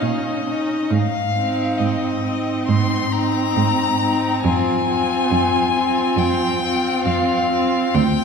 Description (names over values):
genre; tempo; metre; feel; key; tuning
classical, slow romantic movement for string quartet; 68 BPM; 4/4; rubato; unclear; A4 = 441 Hz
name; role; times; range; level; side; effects
rich violin; melody; 0.0-8.2 s; Eb5 to C6; -22 LUFS; left 4 dB; none
warm violin; second line; 0.0-8.0 s; Eb4 to F4; -24 LUFS; left 1 dB; none
warm viola; accompaniment; 0.0-8.0 s; C4 to Db4; -23 LUFS; right 1 dB; none
clear cello; bass; 0.0-8.2 s; D2 to Bb2; -23 LUFS; right 4 dB; none
room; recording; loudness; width
wet concert hall reverb, RT60 2.5 s; heard from further back in the room; -17 LUFS; side -5 dB against mid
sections
0.0-8.2 A section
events
none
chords
0.0 Eb7(no3)/Bb; 0.9 Ab; 4.5 Fm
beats
0.02 | 0.91 1.80 2.69 3.57 | 4.46 5.33 6.19 7.08 | 7.97